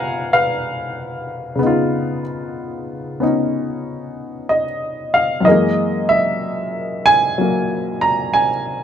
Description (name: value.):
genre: solo jazz.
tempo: 62 BPM.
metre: 4/4.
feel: swing 67% on 8ths.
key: Db mixolydian.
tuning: A4 = 440 Hz.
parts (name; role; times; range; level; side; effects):
warm baby grand piano; solo; 0.0-8.8 s; Gb2 to Bb5; -16 LUFS; equal; none.
room: light reverb.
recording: close, detailed microphones.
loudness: -16 LUFS.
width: side -9 dB against mid.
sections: 0.0-8.8 A section.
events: none.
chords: 0.0 Db9; 5.5 Gb9.